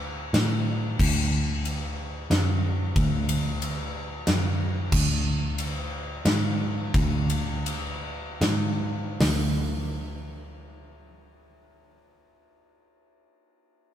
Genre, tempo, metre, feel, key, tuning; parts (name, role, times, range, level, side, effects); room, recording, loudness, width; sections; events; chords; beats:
post-rock; 73-92 BPM; 3/4; straight; D lydian; A4 = 441 Hz
picked electric bass; bass; 0.0-13.2 s; D2 to A2; -26 LUFS; equal
huge arena drum kit; drums; 0.3-9.4 s; crash cymbal, hi-hat, kick drum, ride cymbal, snare drum; -27 LUFS; equal
light reverb; band playing live in one room; -24 LUFS; side -10 dB against mid
0.0-9.2 A section; 9.2-13.9 B section
slowing down 4.9-9.2
0.34 | 0.99 1.65 2.30 | 2.95 3.61 4.26 | 4.92 5.58 6.25 | 6.94 7.66 8.41 | 9.21 10.03 10.85 | 11.68 12.50